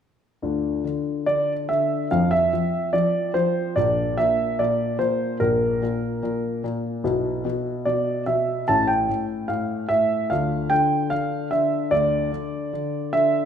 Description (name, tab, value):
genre	classical-period piano sonatina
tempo	73 BPM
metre	4/4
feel	rubato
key	D minor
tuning	A4 = 440 Hz
part	warm concert grand piano	solo	0.4-13.5 s	A1 to A5	-20 LUFS	equal	none
room	wet recital hall reverb, RT60 1.4 s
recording	none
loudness	-20 LUFS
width	side -8 dB against mid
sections	0.4-13.5 A section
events	none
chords	0.4 Dm; 2.1 F5; 3.8 Bb; 7.1 E5/B; 8.7 A; 10.3 Dm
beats	| 0.42 1.27 2.11 2.94 | 3.77 4.59 5.42 6.24 | 7.05 7.87 8.68 9.50 | 10.32 11.12 11.93 12.74